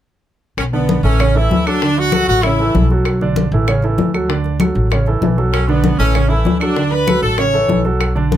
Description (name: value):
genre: latin, salsa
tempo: 194 BPM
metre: 4/4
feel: straight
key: A major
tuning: A4 = 440 Hz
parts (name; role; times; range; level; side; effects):
- bright horn section; melody; 0.6-2.9, 5.5-7.8 s; B3 to C#5; -17 LUFS; left 1 dB; none
- upright bass; bass; 0.6-8.4 s; A1 to D2; -17 LUFS; equal; none
- bongos; percussion; 0.6-8.4 s; none; -26 LUFS; left 8 dB; none
- claves; percussion; 0.6-8.2 s; none; -26 LUFS; right 3 dB; none
- congas; percussion; 0.6-8.4 s; none; -20 LUFS; left 4 dB; none
- clear grand piano; accompaniment; 0.7-8.4 s; C#3 to D5; -18 LUFS; right 4 dB; none
room: light reverb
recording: close, detailed microphones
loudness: -13 LUFS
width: side -11 dB against mid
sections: 0.6-8.4 A section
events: none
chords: 0.6 Bm7; 1.2 A; 1.8 D; 2.4 A; 3.1 Bm7; 3.7 A; 4.3 D; 4.9 A; 5.5 Bm7; 6.2 A; 6.8 D; 7.4 A